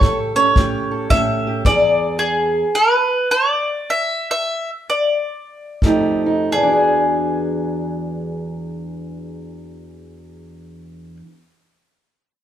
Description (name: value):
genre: acoustic country blues, solo or duo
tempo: 83-110 BPM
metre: 4/4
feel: swing 62% on 8ths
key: E mixolydian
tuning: A4 = 442 Hz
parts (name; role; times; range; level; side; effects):
- mandolin; melody; 0.0-11.2 s; G#4 to E5; -18 LUFS; equal; none
- fingerpicked steel-string acoustic guitar; accompaniment; 0.0-11.4 s; E2 to A4; -21 LUFS; right 1 dB; none
- kick drum; drums; 0.0-1.8, 5.8-6.0 s; none; -18 LUFS; equal; none
room: light reverb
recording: band playing live in one room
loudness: -16 LUFS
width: side -10 dB against mid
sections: 0.0-6.5 A section; 6.5-12.3 B section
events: slowing down 1.7-6.5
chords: 0.0 A7; 1.7 E7; 5.8 F9; 6.5 E9